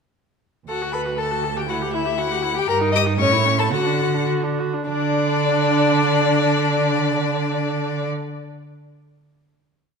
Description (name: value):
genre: quick classical-period movement for string quartet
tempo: 98-122 BPM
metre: 2/4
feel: straight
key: D major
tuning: A4 = 440 Hz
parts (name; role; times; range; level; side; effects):
- rich violin; melody; 0.7-8.1 s; D5 to Eb6; -24 LUFS; left 10 dB; none
- rich violin; second line; 0.7-8.0 s; D4 to Eb5; -23 LUFS; left 3 dB; none
- clear viola; accompaniment; 0.7-8.1 s; C#4 to A4; -25 LUFS; right 1 dB; none
- rich cello; bass; 0.7-8.1 s; D2 to D3; -23 LUFS; right 6 dB; none
room: wet scoring stage reverb, RT60 1.6 s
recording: none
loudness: -18 LUFS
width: side -5 dB against mid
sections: 0.7-4.9 A section; 4.9-7.3 final note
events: slowing down 2.2-4.9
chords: 0.7 D; 1.7 Em7/D; 2.7 Eb/G; 3.2 A; 3.7 D; 4.9 N.C.